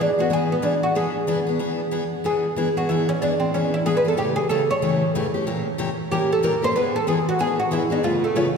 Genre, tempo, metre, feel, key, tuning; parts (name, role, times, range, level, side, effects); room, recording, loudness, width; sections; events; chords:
jazz; 186 BPM; 4/4; swing 61% on 8ths; E mixolydian; A4 = 439 Hz
oud; melody; 0.0-8.5 s; A3 to C#5; -22 LUFS; right 1 dB
picked steel-string acoustic guitar; accompaniment; 0.0-8.5 s; A2 to B4; -23 LUFS; left 2 dB
wet cathedral reverb, RT60 4.7 s; recorded in a church or concert hall; -19 LUFS; side -6 dB against mid
0.0-8.6 A section
oud solo 0.0-8.6
0.0 E7; 4.2 A7; 5.5 A#dim7; 6.7 E7; 8.0 C#aug7